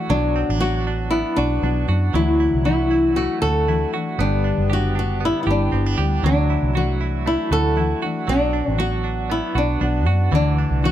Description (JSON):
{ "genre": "pop", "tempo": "117 BPM", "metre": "4/4", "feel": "swing 55% on 16ths", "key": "unclear", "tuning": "A4 = 440 Hz", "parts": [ { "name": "fingerpicked steel-string acoustic guitar", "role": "accompaniment", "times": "0.0-10.9 s", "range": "G2 to G4", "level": "-25 LUFS", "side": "left 4 dB", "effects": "none" }, { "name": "direct-recorded clean electric guitar", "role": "arpeggios", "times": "0.0-10.9 s", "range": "E3 to G4", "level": "-29 LUFS", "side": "right 8 dB", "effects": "tremolo" }, { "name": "flamenco guitar", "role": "melody", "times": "0.1-10.9 s", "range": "D4 to A4", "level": "-22 LUFS", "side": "left 1 dB", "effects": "none" }, { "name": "vintage muted fingered electric bass", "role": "bass", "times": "0.1-10.9 s", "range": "F#1 to F#2", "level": "-21 LUFS", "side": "right 1 dB", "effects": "none" } ], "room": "little or no reverb", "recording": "close, detailed microphones", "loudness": "-17 LUFS", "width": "side -12 dB against mid", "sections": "0.0-10.9 A section", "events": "none", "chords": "0.1 Bm; 2.1 Dadd9; 4.2 G; 6.2 Dadd9; 8.3 Bm; 10.3 Dadd9" }